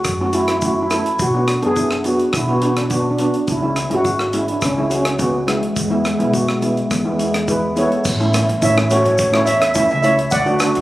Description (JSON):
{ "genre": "calypso", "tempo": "105 BPM", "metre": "4/4", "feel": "straight", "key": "A major", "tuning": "A4 = 439 Hz", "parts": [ { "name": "steel pan", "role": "melody", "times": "0.0-10.8 s", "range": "G#3 to F#5", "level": "-19 LUFS", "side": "equal", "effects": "none" }, { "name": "steel pan", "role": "accompaniment", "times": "0.0-10.8 s", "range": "G#3 to A4", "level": "-19 LUFS", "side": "right 1 dB", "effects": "none" }, { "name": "deep reggae drum kit", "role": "drums", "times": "0.0-10.8 s", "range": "crash cymbal, hi-hat, kick drum, rim click", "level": "-24 LUFS", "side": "equal", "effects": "none" }, { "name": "tube shaker", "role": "percussion", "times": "0.0-10.7 s", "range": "none", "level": "-31 LUFS", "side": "left 1 dB", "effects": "none" }, { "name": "upright bass", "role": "bass", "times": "0.1-10.8 s", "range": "G#1 to A2", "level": "-24 LUFS", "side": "equal", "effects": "none" } ], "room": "moderate concert hall reverb, RT60 2.4 s", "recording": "recorded on a phone in the room, club reverb, compression", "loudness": "-15 LUFS", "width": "side -16 dB against mid", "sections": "0.0-8.1 A section; 8.1-10.8 B section", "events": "none", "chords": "0.0 F#m; 1.2 Bm; 3.5 C#m; 5.8 E; 8.1 A" }